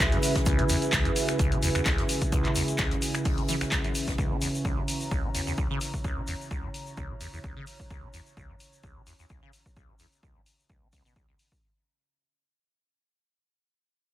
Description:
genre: acid house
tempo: 129 BPM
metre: 4/4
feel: swing 54% on 16ths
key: C# dorian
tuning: A4 = 440 Hz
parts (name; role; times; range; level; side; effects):
- dark analog pad; sustained chords; 0.0-11.6 s; C#3 to C#5; -32 LUFS; right 1 dB; chorus, sidechain pumping
- liquid acid bass; riff; 0.0-11.3 s; B1 to E3; -32 LUFS; equal; phaser, wide subtle chorus, digital delay
- electronic kick drum; drums; 0.0-11.6 s; none; -30 LUFS; equal; none
- jazz brush drum kit; drums; 0.0-4.2 s; hi-hat, shaker, snare drum; -41 LUFS; left 1 dB; none
- punchy analog drum machine; drums; 0.0-11.5 s; finger snaps, handclaps, hi-hat; -31 LUFS; left 1 dB; none
- warbly tape-like pad; texture; 0.0-11.7 s; C#4 to A#5; -35 LUFS; right 2 dB; chorus, built-in reverb, sidechain pumping
- tube shaker; percussion; 0.2-11.6 s; none; -38 LUFS; left 2 dB; none
room: light reverb, small room ambience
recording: none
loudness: -25 LUFS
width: side -14 dB against mid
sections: 0.0-11.6 A section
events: fade-out on ambient pad 0.0-11.6; fade-out 0.0-11.6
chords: 0.0 C#m

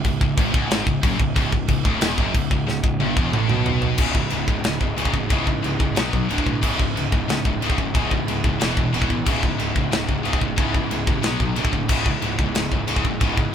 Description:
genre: heavy metal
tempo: 182 BPM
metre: 4/4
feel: straight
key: C# phrygian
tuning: A4 = 439 Hz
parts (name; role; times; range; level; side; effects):
- scooped high-gain guitar; riff; 0.0-13.5 s; C#2 to B3; -29 LUFS; right 4 dB; distortion
- sludgy distorted guitar; riff; 0.0-13.5 s; C#2 to E4; -28 LUFS; equal; overdrive
- fuzz picked electric bass; bass; 0.0-13.4 s; C#1 to B1; -28 LUFS; equal; overdrive
- modern studio drum kit; drums; 0.0-13.5 s; china cymbal, crash cymbal, kick drum, snare drum, toms; -22 LUFS; right 1 dB; none
- scooped high-gain guitar; riff; 0.1-13.5 s; C#2 to B3; -26 LUFS; left 6 dB; distortion
room: light reverb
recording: band playing live in one room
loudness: -19 LUFS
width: side -8 dB against mid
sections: 0.0-4.0 A section; 4.0-13.5 B section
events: drum fill 2.7-4.0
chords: 0.0 C#m; 6.0 B5; 6.3 D5; 6.6 C#m; 8.6 E5; 9.3 C#m; 11.2 B5; 11.6 D5; 11.9 C#m

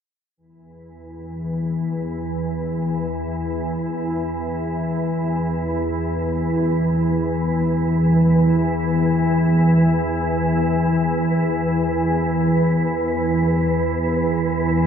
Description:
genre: dark ambient drone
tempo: free time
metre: none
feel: none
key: unclear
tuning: A4 = 440 Hz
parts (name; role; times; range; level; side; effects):
- organ-like drone; drone; 1.0-14.9 s; E2 to E3; -18 LUFS; equal; ensemble chorus, built-in reverb
- wind-like tuned noise texture; texture; 1.3-14.9 s; B4; -30 LUFS; right 2 dB; built-in reverb
room: wet cathedral reverb, RT60 5.8 s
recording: dark, warm production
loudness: -18 LUFS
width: side -8 dB against mid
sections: 0.4-14.9 A section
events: fade-in on synth texture 0.4-14.9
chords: 0.4 E5

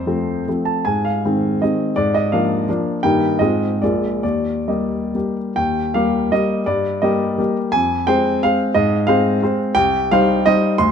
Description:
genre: classical, romantic triple-time dance for piano with dotted rhythms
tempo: 125-190 BPM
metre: 3/4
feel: rubato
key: Eb major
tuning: A4 = 440 Hz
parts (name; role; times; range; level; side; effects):
- warm baby grand piano; solo; 0.0-10.9 s; Bb1 to C6; -16 LUFS; equal; none
room: moderate recital hall reverb, RT60 1.4 s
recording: close, detailed microphones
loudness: -16 LUFS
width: side -7 dB against mid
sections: 0.0-5.6 A section; 5.6-10.9 B section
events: none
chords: 0.0 F; 0.9 Ab; 2.0 Bb7/Ab; 3.0 Eb/G; 3.4 Fm/Ab; 3.8 Bb7; 4.2 Eb; 6.7 Eb/G; 7.7 Fm; 8.7 Fm/Ab; 9.8 Cm

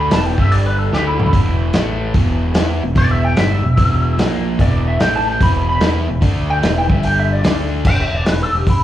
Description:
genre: blues rock power trio and southern rock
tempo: 147 BPM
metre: 4/4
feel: swing 66% on 8ths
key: E minor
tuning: A4 = 440 Hz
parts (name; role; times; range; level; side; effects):
- lightly driven lead guitar; melody; 0.0-8.8 s; E4 to B5; -20 LUFS; equal; wah, slapback echo
- crunchy overdriven guitar; riff; 0.0-7.9 s; E2 to E4; -20 LUFS; equal; slapback echo
- fuzz picked electric bass; bass; 0.0-8.8 s; E1 to E2; -18 LUFS; equal; overdrive
- vintage drum kit; drums; 0.1-8.8 s; crash cymbal, hi-hat, kick drum, snare drum, toms; -17 LUFS; equal; none
room: light reverb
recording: live gig heard through the venue's PA, club reverb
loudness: -13 LUFS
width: side -12 dB against mid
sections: 0.0-7.9 A section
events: drum fill 0.9-1.3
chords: 0.1 E5; 0.3 G5; 0.9 D5; 1.3 E5; 1.7 A5; 2.1 Em; 4.2 A#5; 4.6 E5; 5.0 A5; 5.4 E5; 6.2 D5; 6.6 E5; 6.8 G5; 7.4 D5; 7.9 Em

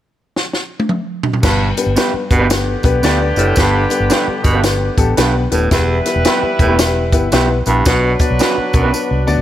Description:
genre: uptempo 1960s-style soul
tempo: 112 BPM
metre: 4/4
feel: swing 63% on 8ths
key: G major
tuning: A4 = 440 Hz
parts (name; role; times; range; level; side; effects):
- compact cocktail drum kit; drums; 0.4-8.8 s; crash cymbal, hi-hat, kick drum, snare drum, toms; -17 LUFS; equal; none
- warm baby grand piano; accompaniment; 1.4-9.4 s; G2 to D5; -18 LUFS; left 4 dB; none
- breathy baritone saxophone; riff; 1.4-8.9 s; E2 to B2; -19 LUFS; right 3 dB; none
- vintage muted fingered electric bass; bass; 1.4-9.4 s; Eb1 to D2; -18 LUFS; equal; none
- tambourine; percussion; 1.4-9.4 s; none; -28 LUFS; right 2 dB; none
- electric guitar through a small old amp; stabs; 2.0-8.9 s; B3 to B4; -20 LUFS; right 5 dB; none
- warm horn section; second line; 2.5-9.4 s; D3 to B4; -21 LUFS; equal; none
room: light reverb, small room ambience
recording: none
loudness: -12 LUFS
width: side -12 dB against mid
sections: 0.0-1.4 A section; 1.4-9.4 B section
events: drum fill 0.4-1.4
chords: 0.0 N.C.; 1.4 G; 5.7 Em; 7.9 Bm

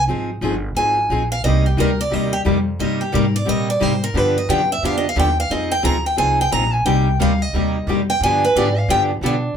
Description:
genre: acoustic string swing (jazz manouche)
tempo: 177 BPM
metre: 4/4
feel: swing 62% on 8ths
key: C minor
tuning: A4 = 440 Hz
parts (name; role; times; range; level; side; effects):
- picked steel-string acoustic guitar; melody; 0.0-9.6 s; D4 to Bb5; -20 LUFS; right 1 dB; none
- upright bass; bass; 0.0-9.6 s; G1 to B2; -22 LUFS; right 1 dB; none
- picked steel-string acoustic guitar; accompaniment; 0.1-9.3 s; C3 to Ab4; -21 LUFS; left 3 dB; none
- picked steel-string acoustic guitar; accompaniment; 1.4-9.3 s; C3 to Ab4; -26 LUFS; right 5 dB; none
room: wet small room ambience, RT60 0.5 s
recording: band playing live in one room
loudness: -16 LUFS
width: side -8 dB against mid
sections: 0.0-9.6 A section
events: steel-string acoustic guitar solo 0.0-9.6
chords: 0.0 Fm7; 1.4 Cm7; 4.2 G7; 5.5 Fm7; 6.9 Cm7; 8.2 G7b9

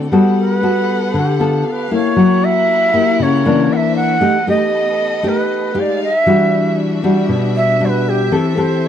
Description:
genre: bossa nova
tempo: 117 BPM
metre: 4/4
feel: straight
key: G major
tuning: A4 = 439 Hz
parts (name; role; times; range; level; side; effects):
- nylon-string guitar; accompaniment; 0.0-8.9 s; B2 to A4; -14 LUFS; left 2 dB; none
- warm studio violin section; sustained chords; 0.0-8.9 s; Ab3 to F#5; -26 LUFS; equal; none
- shakuhachi; melody; 0.4-8.9 s; G4 to F#5; -17 LUFS; right 1 dB; none
room: studio ambience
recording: dry, close 1970s-style studio recording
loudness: -12 LUFS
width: side -9 dB against mid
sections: 0.1-8.9 A section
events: shakuhachi solo 0.1-8.9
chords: 0.1 Gmaj9; 1.7 G9; 2.2 F#7b9; 3.7 C9; 4.2 B7b13; 5.8 Fm9; 6.3 Em9; 8.3 C6/E

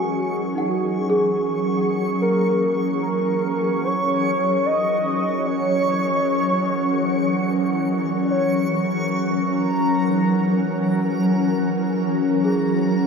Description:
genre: ambient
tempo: free time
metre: none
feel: none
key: F# mixolydian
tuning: A4 = 440 Hz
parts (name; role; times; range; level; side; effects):
- warm velvety synth lead; melody; 0.0-8.7 s; F#4 to D#5; -25 LUFS; equal; chorus, diffuse ambient delay
- ethereal airy pad; sustained chords; 0.0-13.1 s; E3 to A#4; -22 LUFS; left 1 dB; ensemble chorus, built-in reverb
- celesta; arpeggios; 0.0-13.1 s; D#4 to G#5; -27 LUFS; right 2 dB; diffuse ambient delay
- organ-like drone; drone; 0.0-13.1 s; F#3; -27 LUFS; equal; ensemble chorus, built-in reverb
- backwards swelling texture; texture; 0.0-13.1 s; A#5 to C#6; -28 LUFS; right 2 dB; built-in reverb
room: wet huge ambient reverb, RT60 7.5 s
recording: none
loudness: -18 LUFS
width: side -5 dB against mid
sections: 0.0-13.1 A section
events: fade-out on celesta 0.0-13.1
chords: 0.0 F#7

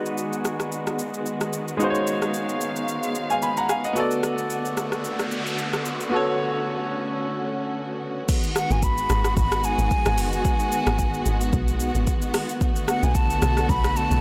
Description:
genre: amapiano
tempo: 111 BPM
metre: 4/4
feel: swing 55% on 16ths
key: G# dorian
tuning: A4 = 439 Hz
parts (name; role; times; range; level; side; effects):
- bright concert grand piano; accompaniment; 0.0-8.3 s; G#3 to B5; -28 LUFS; equal; low-pass filter
- warm studio string section; sustained chords; 0.0-14.2 s; D3 to E#5; -31 LUFS; equal; sidechain pumping, low-pass filter
- afro-pop drum kit; drums; 0.1-14.2 s; crash cymbal, hi-hat, kick drum, rim click, shaker; -28 LUFS; equal; none
- noise sweep; sound effects; 4.6-7.2 s; none; -36 LUFS; equal; none
- breathy mellow silver concert flute; melody; 8.6-14.2 s; F#5 to B5; -28 LUFS; equal; analog delay
- deep log drum bass; bass; 8.7-14.2 s; F#1 to B1; -26 LUFS; equal; none
room: little or no reverb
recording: dry, gritty hardware recording, transformer saturation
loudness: -24 LUFS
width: mono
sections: 0.0-8.3 A section; 8.3-14.2 B section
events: noise sweep 4.6-8.3; drop 8.3-14.2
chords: 0.0 G#m7; 4.0 Bm7; 8.3 G#m7; 12.6 Bm7

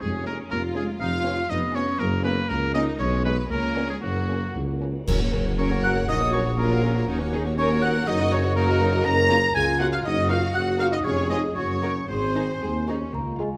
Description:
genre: cinematic, playful, whimsical film cue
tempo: 120 BPM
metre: 2/4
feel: straight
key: F# major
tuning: A4 = 441 Hz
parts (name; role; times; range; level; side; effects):
- rich chamber violin section; melody; 0.0-13.6 s; F#4 to Bb5; -36 LUFS; equal; none
- bright oboe; second line; 0.0-12.9 s; F#4 to Bb5; -33 LUFS; equal; none
- clear studio viola section; accompaniment; 0.0-13.6 s; Eb3 to F#4; -35 LUFS; equal; none
- mellow tuba; bass; 0.0-13.1 s; F1 to D#2; -31 LUFS; equal; none
- rich chamber double bass section; bass; 0.0-13.5 s; F#1 to F#2; -31 LUFS; equal; none
- warm studio cello section; bass; 0.0-13.6 s; F#3 to A#4; -34 LUFS; equal; none
- dark studio violin section; second line; 0.3-13.6 s; Ab3 to D#5; -35 LUFS; equal; none
- cymbal swell, clash cymbals and concert bass drum; percussion; 3.0-6.0 s; none; -34 LUFS; equal; none
- large celesta; melody; 5.6-13.6 s; Ab5 to Bb6; -36 LUFS; equal; none
- clear clarinet; second line; 5.6-13.5 s; F4 to Bb5; -35 LUFS; equal; none
- concert flute; second line; 5.6-12.9 s; A#5 to Bb6; -32 LUFS; equal; none
- mellow French horn section; sustained chords; 5.6-13.6 s; Ab3 to Bb4; -32 LUFS; equal; none
- mellow bassoon; accompaniment; 13.4-13.5 s; Ab3; -32 LUFS; equal; none
room: moderate scoring stage reverb, RT60 1.7 s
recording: none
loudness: -24 LUFS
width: mono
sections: 0.0-5.1 A section; 5.1-13.1 B section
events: band accent 5.1-5.6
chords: 0.0 Db/F; 1.0 C#7/E#; 2.0 F#; 3.0 G#m/B; 3.5 C#5; 4.0 F#; 6.1 F#/A#; 7.1 D#m7; 8.1 D#m/F#; 9.1 Gbmaj7; 10.1 Ebm/Gb; 11.1 Db/F; 11.6 Ebm7/Gb; 12.1 Ab

